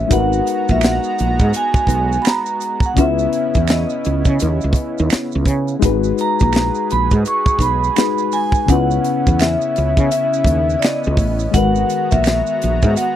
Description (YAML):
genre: R&B, neo-soul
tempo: 84 BPM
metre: 4/4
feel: swing 61% on 16ths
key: G# minor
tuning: A4 = 439 Hz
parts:
  - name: vibraphone with medium mallets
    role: melody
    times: 0.0-13.2 s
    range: D5 to C#6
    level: -19 LUFS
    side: right 1 dB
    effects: none
  - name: bright reed electric piano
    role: accompaniment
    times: 0.0-13.2 s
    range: C#3 to B4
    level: -23 LUFS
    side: left 15 dB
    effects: none
  - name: warm analog pad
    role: sustained chords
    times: 0.0-13.2 s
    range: C#3 to A#5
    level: -26 LUFS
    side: right 2 dB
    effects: chorus, tremolo
  - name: woody fretless electric bass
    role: bass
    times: 0.0-12.9 s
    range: G#1 to C#3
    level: -18 LUFS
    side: right 1 dB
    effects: analog chorus
  - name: tight funk drum kit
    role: drums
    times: 0.1-13.2 s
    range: hi-hat, kick drum, snare drum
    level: -17 LUFS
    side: equal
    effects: none
  - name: maracas and finger snaps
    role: percussion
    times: 0.1-13.2 s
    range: none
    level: -30 LUFS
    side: right 16 dB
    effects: none
room: little or no reverb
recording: dry, close 1970s-style studio recording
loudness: -14 LUFS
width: side -11 dB against mid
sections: 0.0-13.2 A section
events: none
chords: 0.1 G#m9; 3.0 C#m9; 5.8 G#m9; 8.7 C#m9; 11.5 G#m9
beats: | 0.11 0.82 1.53 2.25 | 2.96 3.68 4.39 5.11 | 5.82 6.54 7.25 7.96 | 8.68 9.39 10.11 10.82 | 11.54 12.25 12.96